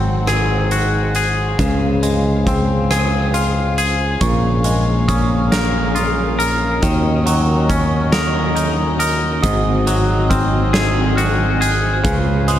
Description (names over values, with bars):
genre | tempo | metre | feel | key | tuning
post-rock | 46 BPM (dotted quarters) | 6/8 | straight | unclear | A4 = 440 Hz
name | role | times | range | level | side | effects
rich studio string section | sustained chords | 0.0-12.6 s | Db3 to Gb5 | -25 LUFS | left 1 dB | none
twangy electric guitar | arpeggios | 0.0-12.6 s | Ab2 to Bb4 | -20 LUFS | left 2 dB | wide subtle chorus, digital delay
modern bright fingered electric bass | bass | 0.0-12.6 s | Ab1 to Eb2 | -18 LUFS | equal | none
huge arena drum kit | drums | 0.3-12.6 s | hi-hat, kick drum, rim click, snare drum | -21 LUFS | equal | none
glockenspiel with rubber mallets | arpeggios | 4.2-12.6 s | Db6 to Gb6 | -25 LUFS | right 4 dB | digital delay
room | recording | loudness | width
small room ambience | dark, warm production | -14 LUFS | side -11 dB against mid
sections
0.0-12.6 A section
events
none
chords
0.0 Ab7; 1.6 Dbmaj7; 4.2 Bbm7; 6.8 Ebm7; 9.4 Ab7; 12.1 Dbmaj7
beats
0.27 | 1.58 2.90 | 4.21 5.52 | 6.83 8.13 | 9.44 10.75 | 12.05